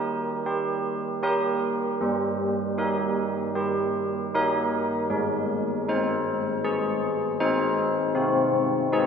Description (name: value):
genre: classical, tune for church bells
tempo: 78 BPM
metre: 4/4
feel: straight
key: Eb major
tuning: A4 = 444 Hz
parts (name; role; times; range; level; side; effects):
- old church bells; solo; 0.0-9.1 s; G3 to C5; -23 LUFS; equal; none
room: wet church reverb, RT60 3.5 s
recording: recorded in a church or concert hall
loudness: -23 LUFS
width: side -6 dB against mid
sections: 0.0-9.1 A section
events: none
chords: 0.0 Eb (rootless); 2.0 Eb/G; 5.1 Ab; 8.2 Ab/C